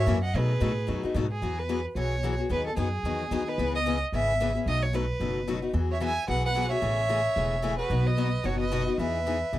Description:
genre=acoustic string swing (jazz manouche)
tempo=222 BPM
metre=4/4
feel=swing 57% on 8ths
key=E major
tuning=A4 = 440 Hz
part: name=rich violin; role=melody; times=0.0-9.6 s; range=G#4 to G#5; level=-30 LUFS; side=right 1 dB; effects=none
part: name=warm violin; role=second line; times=0.0-1.2, 5.9-9.6 s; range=F#4 to E5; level=-36 LUFS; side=right 7 dB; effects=none
part: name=picked steel-string acoustic guitar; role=accompaniment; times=0.0-9.6 s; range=B2 to G#4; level=-30 LUFS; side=left 5 dB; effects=none
part: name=upright bass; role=bass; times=0.0-9.6 s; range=E1 to B2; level=-29 LUFS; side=right 1 dB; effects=none
room=light reverb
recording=dry, close 1970s-style studio recording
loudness=-25 LUFS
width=side -14 dB against mid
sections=0.0-1.4 A section; 1.4-9.6 B section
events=none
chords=0.3 B6; 1.4 Eadd9; 2.5 G#m7/D#; 3.6 C#m7; 4.7 B7; 5.7 Eadd9; 6.8 Amaj7; 7.9 B; 9.0 Emaj7

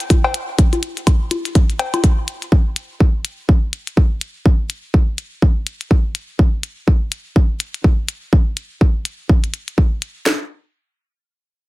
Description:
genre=techno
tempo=124 BPM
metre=4/4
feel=swing 59% on 16ths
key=none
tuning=none
part: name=electronic hi-hat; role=drums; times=0.0-10.1 s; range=none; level=-26 LUFS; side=left 3 dB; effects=none
part: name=house drum kit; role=drums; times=0.1-10.4 s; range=handclaps, kick drum, snare drum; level=-13 LUFS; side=equal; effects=none
part: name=congas, cowbell and woodblock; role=percussion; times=0.1-2.0 s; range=none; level=-22 LUFS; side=left 3 dB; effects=dub echo
room=digital ambience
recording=dense, heavily limited modern master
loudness=-15 LUFS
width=side -19 dB against mid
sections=0.0-10.3 A section; 10.3-11.7 B section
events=none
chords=none

